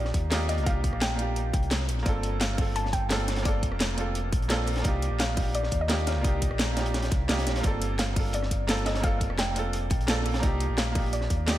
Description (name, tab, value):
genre	liquid drum and bass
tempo	172 BPM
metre	4/4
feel	straight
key	G minor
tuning	A4 = 440 Hz
part	soft round pluck	melody	0.0-11.6 s	D5 to A5	-35 LUFS	left 1 dB	chorus, ping-pong delay
part	bright baby grand piano	accompaniment	0.0-11.6 s	Bb3 to A4	-32 LUFS	right 2 dB	tape echo
part	sub bass with octave	bass	0.0-11.6 s	F1 to Eb2	-29 LUFS	equal	none
part	crunchy breakbeat drum kit	drums	0.0-11.6 s	hi-hat, snare drum	-36 LUFS	equal	high-pass filter on hats, high-pass filter on snare, high-pass filter on room
part	electronic kick drum	drums	0.1-11.4 s	none	-27 LUFS	equal	none
part	garage drum kit	drums	0.1-11.5 s	hi-hat, rim click, snare drum	-32 LUFS	equal	none
room	light reverb, small room reverb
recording	none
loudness	-24 LUFS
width	side -13 dB against mid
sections	0.0-11.6 A section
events	none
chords	0.0 Cm11; 2.1 Gm11; 4.8 Cm11; 7.6 Gm11; 10.4 Cm11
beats	0.31 | 0.66 1.01 1.36 1.71 | 2.06 2.41 2.76 3.10 | 3.45 3.80 4.15 4.50 | 4.85 5.20 5.55 5.89 | 6.24 6.59 6.94 7.29 | 7.64 7.99 8.34 8.69 | 9.04 9.38 9.73 10.08 | 10.43 10.78 11.13 11.48